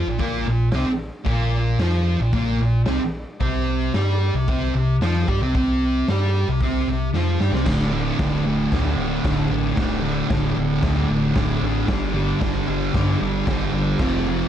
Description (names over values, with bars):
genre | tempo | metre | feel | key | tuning
garage rock duo or trio | 113 BPM | 4/4 | straight | D minor | A4 = 436 Hz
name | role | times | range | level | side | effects
thick fuzz guitar | riff | 0.0-14.5 s | D2 to G4 | -21 LUFS | right 1 dB | distortion
sub bass with octave | bass | 0.0-14.4 s | D1 to G2 | -25 LUFS | equal | tube saturation
raw garage drum kit | drums | 0.2-14.1 s | crash cymbal, hi-hat, kick drum, snare drum | -26 LUFS | equal | none
room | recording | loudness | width
light reverb | cassette tape | -19 LUFS | side -10 dB against mid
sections
0.0-7.7 A section; 7.7-14.5 B section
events
drum fill 7.1-7.7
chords
0.0 Bb5; 3.4 C5; 7.7 D5; 11.9 G5; 14.0 F5